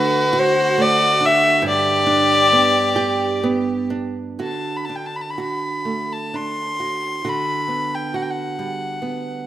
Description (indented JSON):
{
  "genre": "celtic folk, Celtic slow air",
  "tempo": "60-72 BPM",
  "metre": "3/4",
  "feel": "rubato",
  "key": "D mixolydian",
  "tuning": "A4 = 444 Hz",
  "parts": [
    { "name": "warm fiddle", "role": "melody", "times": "0.0-9.5 s", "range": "B4 to C6", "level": "-18 LUFS", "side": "left 2 dB", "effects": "none" },
    { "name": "clear fiddle", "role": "second line", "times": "0.0-3.9 s", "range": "F#4 to G4", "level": "-23 LUFS", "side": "right 2 dB", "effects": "none" },
    { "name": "nylon-string guitar", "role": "accompaniment", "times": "0.0-9.5 s", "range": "G2 to A4", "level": "-24 LUFS", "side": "right 4 dB", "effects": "none" }
  ],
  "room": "moderate lush hall reverb, RT60 2.4 s",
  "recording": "rough home demo mix",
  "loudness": "-17 LUFS",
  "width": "side -12 dB against mid",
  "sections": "0.0-4.4 A section; 4.4-9.5 B section",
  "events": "none",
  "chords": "0.0 D; 1.6 G; 4.4 D; 7.3 Gmaj7/D"
}